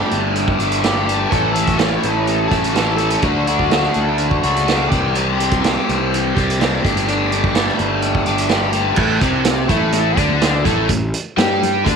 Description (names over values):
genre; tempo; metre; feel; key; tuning
psychedelic rock; 125 BPM; 4/4; straight; unclear; A4 = 439 Hz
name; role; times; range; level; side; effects
overdriven electric guitar; riff; 0.0-12.0 s; A2 to A4; -17 LUFS; left 1 dB; flanger
fuzz picked electric bass; bass; 0.1-12.0 s; G1 to G2; -22 LUFS; left 1 dB; overdrive
vintage drum kit; drums; 0.1-12.0 s; crash cymbal, hi-hat, kick drum, snare drum; -20 LUFS; right 4 dB; none
congas; percussion; 9.5-12.0 s; none; -28 LUFS; left 12 dB; none
room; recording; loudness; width
light reverb; 1960s-style stereo; -14 LUFS; side -6 dB against mid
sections
0.0-9.0 A section; 9.0-12.0 B section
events
none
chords
0.0 Gsus2; 1.3 A; 3.2 D; 4.9 C; 6.8 Gsus2; 9.0 Amadd11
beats
0.37 0.85 | 1.33 1.81 2.29 2.77 | 3.25 3.72 4.20 4.68 | 5.16 5.64 6.12 6.60 | 7.08 7.55 8.03 8.51 | 8.99 9.47 9.95 10.43 | 10.91 11.39 11.87